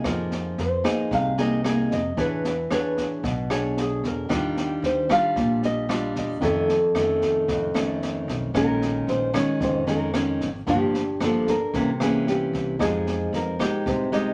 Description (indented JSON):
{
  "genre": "bossa nova",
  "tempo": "113 BPM",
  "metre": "4/4",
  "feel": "straight",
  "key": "F minor",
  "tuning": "A4 = 439 Hz",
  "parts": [
    { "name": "nylon-string guitar", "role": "accompaniment", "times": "0.0-14.3 s", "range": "F2 to C#5", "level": "-27 LUFS", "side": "equal", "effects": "none" },
    { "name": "upright bass", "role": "bass", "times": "0.0-14.3 s", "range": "G1 to F2", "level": "-35 LUFS", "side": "equal", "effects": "none" },
    { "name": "open jazz drum kit", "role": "drums", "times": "0.0-14.2 s", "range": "kick drum, rim click, snare drum", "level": "-34 LUFS", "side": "equal", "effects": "none" },
    { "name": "nylon-string guitar", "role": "melody", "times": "0.1-14.3 s", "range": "G4 to F5", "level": "-28 LUFS", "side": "equal", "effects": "none" }
  ],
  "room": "moderate studio reverb, RT60 0.7 s",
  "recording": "none",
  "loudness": "-24 LUFS",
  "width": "mono",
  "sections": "0.0-14.3 A section",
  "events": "none",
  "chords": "0.0 Fm7; 2.2 E6; 4.3 Ebmaj9; 6.4 Faug7; 8.5 Bbm7; 10.7 Gm7; 11.7 C7b9; 12.8 Fm9"
}